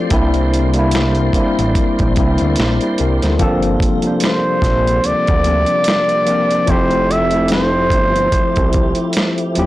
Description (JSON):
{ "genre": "R&B, neo-soul", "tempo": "73 BPM", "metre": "4/4", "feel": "swing 57% on 16ths", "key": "unclear", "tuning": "A4 = 439 Hz", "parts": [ { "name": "tine electric piano", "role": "accompaniment", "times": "0.0-9.7 s", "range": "F3 to F5", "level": "-18 LUFS", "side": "left 2 dB", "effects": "medium stereo tremolo, plate reverb" }, { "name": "tonewheel organ", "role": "sustained chords", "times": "0.0-9.7 s", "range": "C3 to C6", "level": "-25 LUFS", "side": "right 1 dB", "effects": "slow rotary speaker, overdrive, chorus vibrato, plate reverb" }, { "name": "fat analog bass", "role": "bass", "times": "0.1-9.7 s", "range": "Eb1 to D2", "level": "-18 LUFS", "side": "equal", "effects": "tube saturation" }, { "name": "dusty soul sampler-style drum kit", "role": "drums", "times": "0.1-9.7 s", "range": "hi-hat, kick drum, snare drum", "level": "-18 LUFS", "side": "equal", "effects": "overdrive" }, { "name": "clear flugelhorn", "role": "melody", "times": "4.2-9.1 s", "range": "C5 to E5", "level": "-16 LUFS", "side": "right 1 dB", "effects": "slapback echo, plate reverb" } ], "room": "moderate studio reverb, RT60 0.5 s", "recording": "blown-out, overdriven recording, overdrive", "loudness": "-13 LUFS", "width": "side -16 dB against mid", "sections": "0.0-3.4 A section; 3.4-9.7 B section", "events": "none", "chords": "0.1 C9; 3.4 Gm11; 6.7 Fmaj9" }